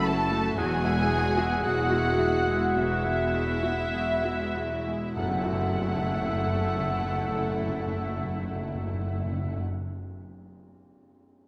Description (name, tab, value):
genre	cinematic, emotional film score for orchestra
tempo	47-59 BPM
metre	4/4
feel	rubato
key	F# minor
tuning	A4 = 440 Hz
part	muted studio violin section	melody	0.0-9.6 s	E5 to A5	-37 LUFS	equal	none
part	flute section	second line	0.0-9.6 s	E5 to A5	-38 LUFS	equal	none
part	muted studio violin section	second line	0.0-9.6 s	E4 to A4	-41 LUFS	equal	none
part	warm clarinet	second line	0.0-9.6 s	G#4 to A4	-39 LUFS	equal	none
part	warm oboe	second line	0.0-9.6 s	E5 to F#5	-37 LUFS	equal	none
part	clear concert grand piano	accompaniment	0.0-11.5 s	E2 to E5	-37 LUFS	equal	none
part	muted chamber viola section	accompaniment	0.0-9.6 s	F#3 to F#4	-39 LUFS	equal	none
part	mellow French horn section	sustained chords	0.0-9.6 s	G#3 to F#4	-37 LUFS	equal	none
part	concert harp	arpeggios	0.0-10.0 s	E2 to F#5	-44 LUFS	equal	none
part	muted chamber cello section	bass	0.0-9.6 s	E2 to F#2	-37 LUFS	equal	none
part	muted studio double bass section	bass	0.0-9.6 s	E1 to F#1	-36 LUFS	equal	none
part	tam-tam	percussion	5.2-9.6 s	none	-43 LUFS	equal	none
part	timpani	percussion	5.2-9.6 s	F#2	-35 LUFS	equal	none
room	wet concert hall reverb, RT60 1.9 s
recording	none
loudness	-27 LUFS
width	mono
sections	0.0-5.2 A section; 5.2-10.1 B section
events	slowing down 0.0-5.2; band accent 5.2-6.4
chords	0.0 F#m7; 0.6 Eadd9; 5.2 F#m7